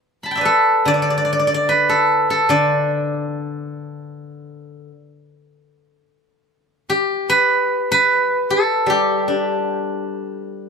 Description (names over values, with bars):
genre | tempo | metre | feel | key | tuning
chinese traditional, Chinese solo plucked strings | 75 BPM | 4/4 | rubato | G gong mode | A4 = 440 Hz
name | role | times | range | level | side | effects
steel-string zither | solo | 0.2-10.7 s | D3 to B5 | -16 LUFS | equal | none
room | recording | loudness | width
light reverb | close, detailed microphones | -15 LUFS | side -5 dB against mid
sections
0.0-10.7 A section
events
none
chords
none